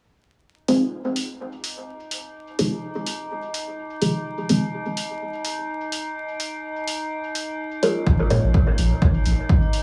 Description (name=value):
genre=dub techno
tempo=126 BPM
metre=4/4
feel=swing 55% on 16ths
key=F minor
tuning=A4 = 440 Hz
part: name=metallic inharmonic drone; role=texture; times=1.3-9.8 s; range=Eb4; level=-33 LUFS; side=equal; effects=chorus, built-in reverb, sidechain pumping
part: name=filtered dub chord stab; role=stabs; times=0.7-4.6, 7.8-8.4 s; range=C4 to Db5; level=-26 LUFS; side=equal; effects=phaser, sidechain pumping, dub echo
part: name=electronic hi-hat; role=drums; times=0.7-9.8 s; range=none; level=-33 LUFS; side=equal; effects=none
part: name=round analog bass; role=bass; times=8.1-9.3 s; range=Bb1 to Bb2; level=-23 LUFS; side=equal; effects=sidechain pumping
part: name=electronic kick drum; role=drums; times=8.1-9.6 s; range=none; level=-21 LUFS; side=equal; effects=none
room=light reverb, digital ambience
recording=echo-heavy mix, vinyl crackle, small room ambience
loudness=-24 LUFS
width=mono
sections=0.4-9.8 A section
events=filter sweep on synth stab 0.4-9.8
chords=0.4 Fm7; 8.1 Bbm7